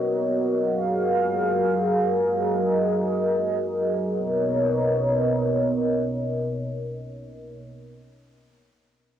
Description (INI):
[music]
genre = hip hop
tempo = free time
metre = none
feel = none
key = B lydian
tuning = A4 = 445 Hz
[part]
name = dark analog pad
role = sustained chords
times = 0.0-7.6 s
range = B2 to E#5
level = -22 LUFS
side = equal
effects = chorus, low-pass filter, cassette tape
[sound]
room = light reverb, digital ambience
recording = home recording on cassette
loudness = -21 LUFS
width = side -10 dB against mid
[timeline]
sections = 0.0-4.1 A section; 4.1-7.7 B section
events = filter sweep on analog synth pad 0.0-4.1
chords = 0.0 Bmaj9; 0.6 F#maj7; 4.1 Bmaj9